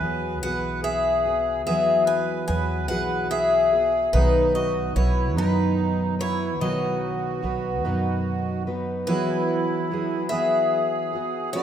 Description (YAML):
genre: acoustic folk duo or small band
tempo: 49 BPM (dotted quarters)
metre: 6/8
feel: straight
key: E major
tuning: A4 = 440 Hz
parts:
  - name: picked steel-string acoustic guitar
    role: melody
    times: 0.0-11.6 s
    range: B4 to G#5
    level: -25 LUFS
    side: left 3 dB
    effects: none
  - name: accordion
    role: second line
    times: 0.0-11.6 s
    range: D#4 to B4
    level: -29 LUFS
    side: right 6 dB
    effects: light tremolo tuning
  - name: fingerpicked twelve-string acoustic guitar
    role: accompaniment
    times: 0.0-11.6 s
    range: B2 to B4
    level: -27 LUFS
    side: left 1 dB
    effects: none
  - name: upright bass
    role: bass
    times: 0.0-9.0 s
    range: B1 to F#2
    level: -26 LUFS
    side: right 1 dB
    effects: none
room: wet concert hall reverb, RT60 2.2 s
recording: minimal, uncompressed stereo recording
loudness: -21 LUFS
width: side -9 dB against mid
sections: 0.0-9.1 A section; 9.1-11.6 B section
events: none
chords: 0.0 Eadd9; 4.1 B; 9.1 Eadd9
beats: 0.42 | 1.66 2.90 | 4.14 5.38 | 6.61 7.84 | 9.08 10.31 | 11.54